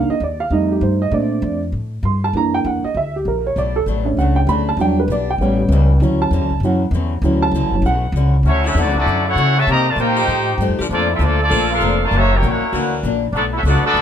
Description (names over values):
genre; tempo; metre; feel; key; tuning
jazz; 196 BPM; 4/4; swing 62% on 8ths; D major; A4 = 436 Hz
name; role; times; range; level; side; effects
dark upright piano; accompaniment; 0.0-8.3 s; Eb3 to C6; -18 LUFS; right 2 dB; none
upright bass; bass; 0.0-14.0 s; F1 to C#3; -18 LUFS; equal; none
picked old ladder-braced acoustic guitar; accompaniment; 3.6-14.0 s; F#2 to G4; -25 LUFS; left 7 dB; none
muted trombone section; second line; 8.4-14.0 s; C#3 to A4; -24 LUFS; right 1 dB; none
clear trumpet section; melody; 8.5-14.0 s; A3 to Bb5; -18 LUFS; equal; plate reverb
clear saxophone section; sustained chords; 8.6-14.0 s; D3 to A4; -25 LUFS; left 3 dB; none
room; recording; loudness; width
light reverb; close, detailed microphones; -15 LUFS; side -9 dB against mid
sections
0.0-8.4 A section; 8.4-14.0 B section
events
upright piano solo 0.0-8.4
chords
0.0 Cm7 (rootless); 0.5 F9; 1.1 Bbmaj7; 2.3 F#7b13; 3.6 Bm7; 4.8 Em7; 5.4 A7; 6.0 Dmaj9; 9.7 Cm7; 10.3 F9; 10.9 Bbmaj7; 12.1 F#7b13; 13.3 Bm7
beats
0.21 0.51 0.82 | 1.12 1.43 1.73 2.04 | 2.34 2.65 2.95 3.26 | 3.56 3.87 4.17 4.48 | 4.79 5.09 5.39 5.70 | 6.01 6.31 6.62 6.92 | 7.23 7.53 7.84 8.14 | 8.45 8.75 9.06 9.36 | 9.67 9.97 10.28 10.59 | 10.89 11.20 11.50 11.81 | 12.11 12.42 12.73 13.03 | 13.34 13.64 13.95